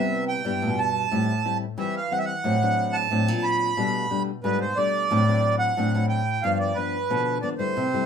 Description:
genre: samba and choro.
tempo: 90 BPM.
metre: 4/4.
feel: straight.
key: unclear.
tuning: A4 = 437 Hz.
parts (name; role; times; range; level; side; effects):
accordion; melody; 0.0-8.1 s; B4 to B5; -25 LUFS; right 4 dB; none.
nylon-string guitar; accompaniment; 0.0-8.1 s; G2 to E4; -28 LUFS; left 7 dB; none.
nylon-string guitar; bass; 0.0-8.1 s; G2 to G3; -26 LUFS; equal; none.
room: moderate studio ambience, RT60 0.5 s.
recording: minimal, uncompressed stereo recording.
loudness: -22 LUFS.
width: side -7 dB against mid.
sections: 0.0-8.1 A section.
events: none.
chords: 0.0 Cmaj7; 1.1 Am7; 2.4 D7/A; 3.8 Gadd9/B; 5.1 D7/A; 6.4 G7.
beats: 0.45 1.12 1.78 | 2.45 3.11 3.77 4.44 | 5.10 5.77 6.43 7.10 | 7.76.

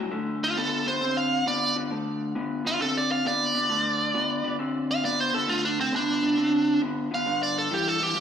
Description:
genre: blues.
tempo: 134 BPM.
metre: 4/4.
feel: swing 66% on 8ths.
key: unclear.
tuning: A4 = 441 Hz.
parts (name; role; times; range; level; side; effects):
electric guitar through a small old amp; riff; 0.0-8.2 s; G2 to C4; -28 LUFS; left 3 dB; spring reverb, slapback echo.
biting overdriven guitar; melody; 0.4-8.2 s; C4 to F5; -25 LUFS; right 2 dB; slapback echo.
room: light reverb.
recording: live gig heard through the venue's PA, club reverb.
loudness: -23 LUFS.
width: side -8 dB against mid.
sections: 0.1-8.2 A section.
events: none.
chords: 0.1 D5; 7.3 G5.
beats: | 0.12 0.56 1.01 1.46 | 1.91 2.35 2.80 3.25 | 3.69 4.14 4.59 5.03 | 5.48 5.92 6.37 6.81 | 7.26 7.70 8.15.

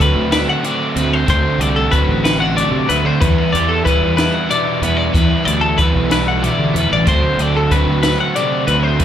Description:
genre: math rock and midwest emo.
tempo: 62 BPM (dotted quarters).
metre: 6/8.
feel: straight.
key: unclear.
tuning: A4 = 440 Hz.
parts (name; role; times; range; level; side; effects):
twelve-string electric guitar; accompaniment; 0.0-9.0 s; E2 to A4; -21 LUFS; right 6 dB; spring reverb.
twelve-string electric guitar; arpeggios; 0.0-9.0 s; A4 to F#5; -18 LUFS; left 4 dB; none.
crunchy overdriven guitar; riff; 0.0-9.0 s; D3 to F#4; -20 LUFS; right 1 dB; slapback echo.
compact cocktail drum kit; drums; 0.0-9.0 s; hi-hat, kick drum, snare drum; -18 LUFS; equal; none.
fuzz fingered electric bass; bass; 0.2-9.0 s; A1 to D3; -19 LUFS; equal; overdrive.
room: small room ambience.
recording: live gig heard through the venue's PA, club reverb.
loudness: -13 LUFS.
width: side -10 dB against mid.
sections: 0.0-9.0 A section.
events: none.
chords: 0.0 D7; 3.2 Em7; 7.1 D7.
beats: 0.33 | 1.29 2.26 | 3.22 4.18 | 5.14 6.11 | 7.07 8.04 | 9.00.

